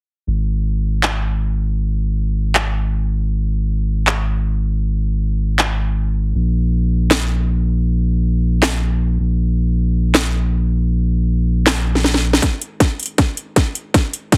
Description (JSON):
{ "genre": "future bass", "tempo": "158 BPM", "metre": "4/4", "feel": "half-time", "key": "unclear", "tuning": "A4 = 441 Hz", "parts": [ { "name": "saturated sub bass", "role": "bass", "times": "0.3-14.4 s", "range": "Ab1 to Bb1", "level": "-19 LUFS", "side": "equal", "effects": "sidechain pumping, high-pass filter" }, { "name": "trap drum kit", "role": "drums", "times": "1.0-14.4 s", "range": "handclaps, hi-hat, snare drum", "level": "-19 LUFS", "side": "equal", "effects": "overdrive" }, { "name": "electronic kick drum", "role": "drums", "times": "12.4-14.4 s", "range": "none", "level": "-17 LUFS", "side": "equal", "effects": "overdrive" } ], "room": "little or no reverb", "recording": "heavily compressed radio sound, multiband compression", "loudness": "-18 LUFS", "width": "mono", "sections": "0.3-12.4 A section; 12.4-14.4 B section", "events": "drum fill 12.0-12.4, 12.4-14.4; build-up 12.4-14.4", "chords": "none", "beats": "| 0.27 0.65 1.03 1.41 | 1.79 2.17 2.55 2.93 | 3.31 3.69 4.07 4.45 | 4.83 5.21 5.59 5.97 | 6.35 6.73 7.11 7.49 | 7.87 8.25 8.63 9.01 | 9.39 9.77 10.15 10.53 | 10.91 11.29 11.67 12.04 | 12.43 12.80 13.19 13.56 | 13.94 14.32" }